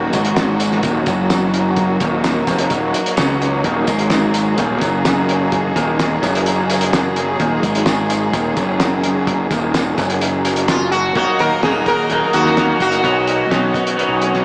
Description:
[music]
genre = psychedelic rock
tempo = 128 BPM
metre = 4/4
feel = straight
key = Eb minor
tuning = A4 = 442 Hz
[part]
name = clear studio string section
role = sustained chords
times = 0.0-14.4 s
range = Gb3 to Bb5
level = -23 LUFS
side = equal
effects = none
[part]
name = twelve-string electric guitar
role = riff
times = 0.0-14.4 s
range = Eb2 to Eb4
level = -23 LUFS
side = equal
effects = phaser
[part]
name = fuzz fingered electric bass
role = bass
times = 0.0-14.4 s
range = Eb1 to Eb2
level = -23 LUFS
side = equal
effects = overdrive
[part]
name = cloth-damped thuddy drum kit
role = drums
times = 0.1-14.4 s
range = hi-hat, kick drum, snare drum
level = -23 LUFS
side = equal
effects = none
[part]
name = tambourine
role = percussion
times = 0.1-11.0 s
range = none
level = -38 LUFS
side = equal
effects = none
[part]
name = sitar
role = melody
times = 10.7-14.4 s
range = F4 to Bb4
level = -20 LUFS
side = equal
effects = tape echo
[sound]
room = wet huge ambient reverb, RT60 7.1 s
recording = dreamy mix soaked in reverb, small speaker sound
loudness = -17 LUFS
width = mono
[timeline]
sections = 0.0-11.2 A section; 11.2-14.4 B section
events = none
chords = 0.0 Ebm; 13.0 Badd9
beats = 0.37 0.84 1.30 | 1.77 2.24 2.71 3.18 | 3.65 4.12 4.58 5.05 | 5.52 5.99 6.46 6.93 | 7.40 7.87 8.34 8.81 | 9.28 9.75 10.21 10.69 | 11.15 11.62 12.09 12.56 | 13.03 13.50 13.97 14.45

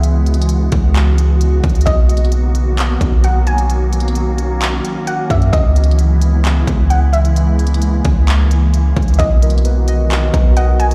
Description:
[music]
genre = hip hop, atmospheric cloud-rap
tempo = 131 BPM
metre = 4/4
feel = half-time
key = B major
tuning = A4 = 442 Hz
[part]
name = glassy FM pad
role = sustained chords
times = 0.0-10.9 s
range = C#3 to F#4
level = -23 LUFS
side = equal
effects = ensemble chorus, built-in reverb, sidechain pumping
[part]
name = warm 808-style bass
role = bass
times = 0.0-10.9 s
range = B1 to F#2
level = -15 LUFS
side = equal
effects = none
[part]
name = trap drum kit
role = drums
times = 0.0-10.9 s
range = handclaps, hi-hat, kick drum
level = -22 LUFS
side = equal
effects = none
[part]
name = glassy wavetable pluck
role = melody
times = 1.9-10.9 s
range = D#5 to G#5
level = -25 LUFS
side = equal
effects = chorus, tape echo
[part]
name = muted felt-like synth keys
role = arpeggios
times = 9.2-10.9 s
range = B3 to D#5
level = -25 LUFS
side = equal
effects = chorus, tape echo
[sound]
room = little or no reverb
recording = played on a big sound system in a bare room, stone room reverb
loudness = -14 LUFS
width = mono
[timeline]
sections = 0.0-9.2 A section; 9.2-10.9 B section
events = none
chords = 0.0 C#m7; 1.9 Bmaj7; 5.5 C#m7; 9.2 Bmaj7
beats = | 0.03 0.49 0.95 1.41 | 1.87 2.32 2.78 3.24 | 3.70 4.16 4.61 5.07 | 5.53 5.99 6.45 6.90 | 7.36 7.82 8.28 8.74 | 9.19 9.65 10.11 10.57

